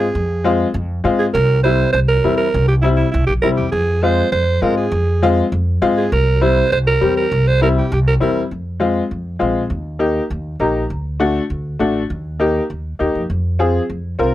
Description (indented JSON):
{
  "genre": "latin",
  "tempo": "201 BPM",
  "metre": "4/4",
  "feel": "straight",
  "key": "unclear",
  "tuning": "A4 = 438 Hz",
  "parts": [
    { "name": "breathy alto saxophone", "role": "melody", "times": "0.0-8.4 s", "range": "E4 to C5", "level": "-18 LUFS", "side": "right 4 dB", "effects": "none" },
    { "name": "clear upright piano", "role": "accompaniment", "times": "0.0-14.3 s", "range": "G3 to Bb5", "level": "-17 LUFS", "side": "left 3 dB", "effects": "none" },
    { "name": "upright bass", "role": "bass", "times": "0.0-14.3 s", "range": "A1 to Ab2", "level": "-19 LUFS", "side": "equal", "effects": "none" }
  ],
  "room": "little or no reverb",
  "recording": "dry, close 1970s-style studio recording",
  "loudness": "-14 LUFS",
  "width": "side -14 dB against mid",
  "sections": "0.0-8.5 A section; 8.5-14.3 B section",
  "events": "upright piano fill 10.5-10.9",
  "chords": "0.0 Fm; 1.3 C7; 3.7 Fm; 6.1 C7; 8.5 Fm; 9.7 Eb; 10.9 D; 12.1 Eb; 13.3 Fm"
}